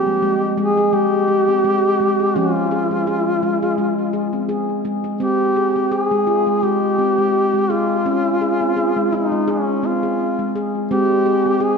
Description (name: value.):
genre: world meditative, meditative tuned percussion.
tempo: 84 BPM.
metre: 4/4.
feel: swing 55% on 16ths.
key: F minor.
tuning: A4 = 435 Hz.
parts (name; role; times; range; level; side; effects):
mellow duduk; melody; 0.0-11.8 s; Db4 to Ab4; -18 LUFS; equal; ping-pong delay.
handpan; arpeggios; 0.0-11.8 s; F3 to Ab4; -20 LUFS; left 1 dB; ping-pong delay.
room: wet plate reverb, RT60 2.5 s.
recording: dreamy mix soaked in reverb.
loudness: -16 LUFS.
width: side -5 dB against mid.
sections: 0.0-5.2 A section; 5.2-11.8 B section.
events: none.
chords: 0.0 Fm; 2.4 Db/F; 5.2 Fm (rootless); 8.1 Db; 10.9 Ab.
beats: 0.23 0.95 1.66 | 2.37 3.08 3.79 4.51 | 5.22 5.93 6.64 7.35 | 8.06 8.77 9.48 10.19 | 10.90 11.61.